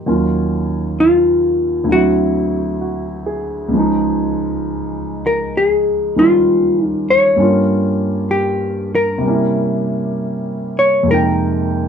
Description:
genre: jazz ballad.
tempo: 65 BPM.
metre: 4/4.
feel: swing 67% on 8ths.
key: unclear.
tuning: A4 = 440 Hz.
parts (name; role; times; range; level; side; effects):
warm grand piano; accompaniment; 0.0-11.9 s; Db2 to G5; -17 LUFS; equal; none.
hollow-body jazz guitar; melody; 1.0-11.9 s; F4 to Db5; -14 LUFS; left 1 dB; none.
room: moderate studio reverb, RT60 0.5 s.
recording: none.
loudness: -14 LUFS.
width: side -7 dB against mid.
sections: 0.0-11.9 A section.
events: none.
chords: 0.1 Ebm9; 1.9 D9; 3.7 Dbadd9; 7.4 Gm7b5; 9.2 C7b9; 11.1 Fm11.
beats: | 0.06 0.98 1.89 2.81 | 3.72 4.64 5.56 6.48 | 7.39 8.31 9.23 10.15 | 11.07.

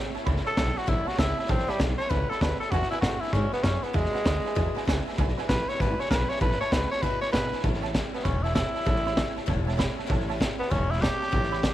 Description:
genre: rockabilly.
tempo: 195 BPM.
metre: 4/4.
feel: swing 64% on 8ths.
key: A mixolydian.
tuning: A4 = 440 Hz.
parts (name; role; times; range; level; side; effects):
picked swing-style acoustic guitar; accompaniment; 0.0-11.7 s; E2 to E4; -38 LUFS; left 12 dB; none.
tack piano; accompaniment; 0.0-11.7 s; B4 to B5; -36 LUFS; right 12 dB; none.
upright bass; bass; 0.0-11.7 s; E1 to B2; -28 LUFS; equal; none.
raw garage drum kit; drums; 0.2-11.7 s; hi-hat, kick drum, snare drum; -28 LUFS; equal; none.
growling tenor saxophone; melody; 0.5-11.7 s; G3 to C#5; -29 LUFS; equal; none.
room: light reverb, small room ambience.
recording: 1960s-style stereo with parts hard left and right.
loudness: -24 LUFS.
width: side -13 dB against mid.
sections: 0.0-7.6 A section; 7.6-11.7 B section.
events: tenor saxophone solo 7.6-11.7.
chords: 0.0 A7; 2.7 E7; 6.4 A7; 7.0 E7; 7.6 A7.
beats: | 0.26 0.57 0.88 1.19 | 1.49 1.80 2.11 2.42 | 2.72 3.03 3.34 3.65 | 3.95 4.26 4.57 4.88 | 5.18 5.49 5.80 6.11 | 6.41 6.72 7.03 7.34 | 7.64 7.95 8.26 8.57 | 8.87 9.18 9.49 9.79 | 10.10 10.41 10.71 11.02 | 11.33 11.63.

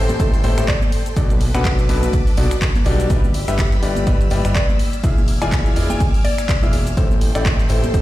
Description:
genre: piano house.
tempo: 124 BPM.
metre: 4/4.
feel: swing 57% on 16ths.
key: unclear.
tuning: A4 = 440 Hz.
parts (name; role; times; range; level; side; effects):
string machine, violins; sustained chords; 0.0-8.0 s; G4 to G#6; -30 LUFS; equal; ensemble chorus, sidechain pumping.
bright upright piano; riff; 0.0-8.0 s; B2 to E5; -24 LUFS; left 2 dB; sidechain pumping, ping-pong delay.
fat analog bass; bass; 0.0-8.0 s; E1 to B1; -20 LUFS; equal; sidechain pumping.
house drum kit; drums; 0.1-8.0 s; finger snaps, handclaps, hi-hat, shaker; -28 LUFS; equal; small room ambience.
congas and tambourine; percussion; 0.1-8.0 s; none; -29 LUFS; right 1 dB; none.
electronic kick drum; drums; 0.2-8.0 s; none; -18 LUFS; equal; small room ambience.
mallet-like synth pluck; melody; 0.7-6.7 s; D5 to G#5; -28 LUFS; left 2 dB; chorus, ping-pong delay.
room: digital ambience.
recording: played on a big sound system in a bare room, large studio reverb.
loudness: -15 LUFS.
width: side -16 dB against mid.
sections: 0.0-8.0 A section.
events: none.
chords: 0.0 Am7; 1.2 Bm7; 3.1 G6; 4.8 E7b9; 7.0 Am7.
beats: 0.20 0.68 | 1.17 1.65 2.13 2.62 | 3.10 3.58 4.07 4.55 | 5.04 5.52 6.00 6.49 | 6.97 7.46 7.94.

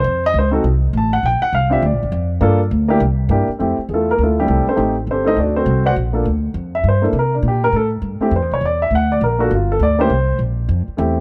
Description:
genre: jazz piano trio.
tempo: 203 BPM.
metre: 4/4.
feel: swing 62% on 8ths.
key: F major.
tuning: A4 = 440 Hz.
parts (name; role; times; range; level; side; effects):
dark baby grand piano; melody; 0.0-11.2 s; G3 to A5; -20 LUFS; equal; none.
upright bass; bass; 0.0-11.2 s; G1 to C3; -20 LUFS; equal; none.
room: small room ambience.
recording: dry, close 1970s-style studio recording.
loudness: -17 LUFS.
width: mono.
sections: 0.0-3.6 A section; 3.6-11.2 A section.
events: grand piano solo 0.0-3.6, 3.6-11.2.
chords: 0.0 F; 1.2 Bb69; 2.4 Gm7; 3.0 C7; 3.6 Fmaj9; 4.8 Am7b5; 5.4 D7; 6.0 Gm7; 7.1 C5; 8.3 F5; 8.9 N.C.; 9.5 G5; 10.1 Bbsus2; 10.7 Fmaj9.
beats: | 0.05 0.34 0.64 0.93 | 1.23 1.52 1.82 2.12 | 2.41 2.71 3.00 3.30 | 3.59 3.89 4.18 4.48 | 4.78 5.07 5.37 5.66 | 5.96 6.25 6.55 6.84 | 7.14 7.44 7.73 8.03 | 8.32 8.62 8.91 9.21 | 9.50 9.80 10.10 10.39 | 10.69 10.98.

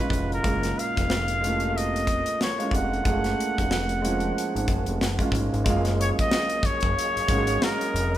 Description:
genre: R&B, neo-soul.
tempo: 92 BPM.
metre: 4/4.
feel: swing 59% on 16ths.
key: F# major.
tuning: A4 = 440 Hz.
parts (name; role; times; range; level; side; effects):
trumpet with straight mute; melody; 0.0-8.2 s; A#4 to F#5; -27 LUFS; equal; none.
warm upright piano; accompaniment; 0.0-8.2 s; A#2 to G#4; -28 LUFS; right 2 dB; none.
fat analog bass; bass; 0.1-8.2 s; E#1 to G#1; -28 LUFS; equal; none.
tight funk drum kit; drums; 0.1-8.2 s; hi-hat, kick drum, snare drum; -27 LUFS; equal; none.
tonewheel organ; sustained chords; 5.7-8.2 s; F#3 to G#4; -34 LUFS; equal; slow rotary speaker, overdrive, chorus vibrato.
room: moderate large studio reverb, RT60 1.1 s.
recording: band playing live in one room.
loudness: -22 LUFS.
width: side -12 dB against mid.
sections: 0.0-5.7 A section; 5.7-8.2 B section.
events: none.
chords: 0.0 F#maj9.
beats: | 0.44 1.09 1.75 2.40 | 3.05 3.70 4.35 5.01 | 5.66 6.31 6.96 7.62.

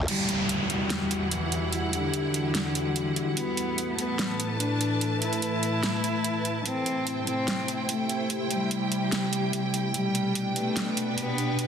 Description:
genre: heavy wobble dubstep.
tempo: 146 BPM.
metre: 4/4.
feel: half-time.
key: E minor.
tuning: A4 = 441 Hz.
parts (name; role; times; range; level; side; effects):
evolving wavetable pad; sustained chords; 0.0-11.7 s; E2 to B4; -31 LUFS; left 1 dB; chorus, built-in reverb.
dark cello; melody; 0.1-11.7 s; D3 to E4; -30 LUFS; equal; dub echo.
dubstep drum kit; drums; 0.1-11.7 s; crash cymbal, hi-hat, snare drum; -30 LUFS; right 2 dB; none.
downlifter; sound effects; 0.1-3.4 s; none; -33 LUFS; left 1 dB; none.
warm studio string section; texture; 0.1-11.7 s; B2 to A5; -33 LUFS; right 1 dB; none.
room: wet lush hall reverb, RT60 1.6 s, digital ambience.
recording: dense, heavily limited modern master.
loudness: -25 LUFS.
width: side -8 dB against mid.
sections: 0.1-11.7 A section.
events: filter sweep on ambient pad 0.1-11.7.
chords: 0.1 Emadd9; 3.4 Asus2; 6.7 C; 9.9 G/B.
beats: | 0.08 0.49 0.90 1.31 | 1.73 2.14 2.55 2.96 | 3.37 3.78 4.19 4.60 | 5.01 5.42 5.83 6.25 | 6.66 7.07 7.48 7.89 | 8.30 8.71 9.12 9.53 | 9.94 10.36 10.77 11.18 | 11.59.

